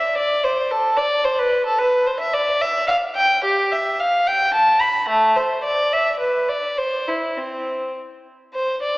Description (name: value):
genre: classical, baroque-style suite movement for unaccompanied violin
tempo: 101-113 BPM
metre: 3/4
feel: rubato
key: C major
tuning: A4 = 440 Hz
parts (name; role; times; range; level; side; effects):
- rich violin; solo; 0.0-9.0 s; A3 to B5; -17 LUFS; equal; none
room: wet concert hall reverb, RT60 2.3 s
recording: recorded in a church or concert hall, AM radio sound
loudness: -17 LUFS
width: side -22 dB against mid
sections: 0.0-8.6 A section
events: none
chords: none